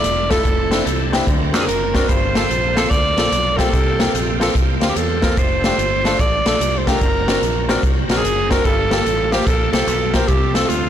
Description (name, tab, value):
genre	uptempo gospel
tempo	146 BPM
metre	4/4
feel	swing 65% on 8ths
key	F major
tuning	A4 = 440 Hz
part	bright alto saxophone	melody	0.0-10.9 s	F4 to D5	-20 LUFS	right 2 dB	none
part	bright tonewheel organ	sustained chords	0.0-10.9 s	E3 to A#4	-28 LUFS	right 2 dB	slow rotary speaker, chorus vibrato
part	fingered electric bass	bass	0.0-10.9 s	E1 to E#2	-23 LUFS	equal	transformer saturation
part	swinging big-band drum kit	drums	0.0-10.8 s	hi-hat, kick drum, snare drum	-19 LUFS	equal	none
part	clear concert grand piano	accompaniment	0.3-10.9 s	G2 to C5	-22 LUFS	left 3 dB	none
room	light reverb, small room ambience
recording	blown-out, overdriven recording, overdrive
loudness	-15 LUFS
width	side -10 dB against mid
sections	0.0-10.9 A section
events	none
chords	0.5 Fmaj13; 1.3 D7alt; 2.1 Gm11; 3.7 C7sus4; 5.4 F69; 7.0 Daug7/F#; 8.7 Gm9; 10.3 F/C